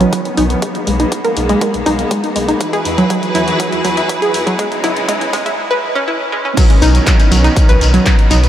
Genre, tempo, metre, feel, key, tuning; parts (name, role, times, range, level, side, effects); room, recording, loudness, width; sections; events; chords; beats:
progressive house; 121 BPM; 4/4; straight; A4 = 440 Hz
bright studio string section; sustained chords; 0.0-8.5 s; C#3 to B4; -19 LUFS; equal; sidechain pumping, low-pass filter
analog pluck; arpeggios; 0.0-8.4 s; F#3 to B4; -15 LUFS; right 1 dB; chorus, sidechain pumping, diffuse ambient delay
round analog bass; bass; 0.0-8.5 s; B1 to E2; -16 LUFS; equal; sidechain pumping
big-room dance drum kit; drums; 0.0-8.5 s; crash cymbal, handclaps, hi-hat; -24 LUFS; left 1 dB; sidechain pumping on hats, sidechain pumping on cymbals
electronic kick drum; drums; 0.1-8.2 s; -12 LUFS; equal; high-pass filter on kick
shekere; percussion; 6.6-8.5 s; -23 LUFS; left 3 dB
moderate huge ambient reverb, RT60 7.7 s; dreamy mix soaked in reverb, high-pass filter; -11 LUFS; side -11 dB against mid
0.0-6.6 A section; 6.6-8.5 B section
build-up 0.0-6.6; filter sweep on synth arpeggio sound 0.0-6.6; filter sweep on string section 0.0-6.6; filter sweep 0.0-6.6; drum fill 2.6-5.6; drop 6.6-8.5
0.0 Badd9; 0.6 G#madd9/B; 2.6 Eadd9; 4.6 C#m7; 6.6 Badd9
0.13 | 0.62 1.12 1.61 2.11 | 2.61 3.10 3.60 4.09 | 4.59 5.09 5.58 6.08 | 6.57 7.07 7.57 8.06